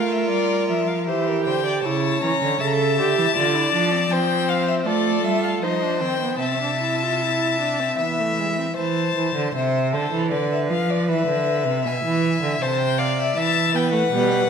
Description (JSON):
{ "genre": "classical, baroque-style fugue for string quartet", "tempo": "78 BPM", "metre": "3/4", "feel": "straight", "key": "D minor, A minor from 4.1 s", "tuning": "A4 = 440 Hz", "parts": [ { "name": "warm violin", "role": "melody", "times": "0.0-14.5 s", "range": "C5 to Bb5", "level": "-24 LUFS", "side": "left 8 dB", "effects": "none" }, { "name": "dark violin", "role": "second line", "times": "0.0-14.5 s", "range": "A4 to E5", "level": "-24 LUFS", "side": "left 2 dB", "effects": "none" }, { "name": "warm viola", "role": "accompaniment", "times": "0.0-8.7, 13.7-14.5 s", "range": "G3 to A4", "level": "-25 LUFS", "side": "right 4 dB", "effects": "none" }, { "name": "rich cello", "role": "bass", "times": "0.0-14.5 s", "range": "B2 to A3", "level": "-24 LUFS", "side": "right 4 dB", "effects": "none" } ], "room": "wet recital hall reverb, RT60 1.4 s", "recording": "none", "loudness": "-19 LUFS", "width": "side -6 dB against mid", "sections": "0.0-8.8 A section; 8.8-14.5 B section", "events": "none", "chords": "0.0 Bb; 1.1 Edim; 1.8 A/C#; 3.4 Dm; 4.1 F; 5.6 F5; 6.4 Am/C; 8.0 E; 8.8 Am; 10.3 Bdim/D; 11.1 E; 12.6 Am/C; 13.4 Em" }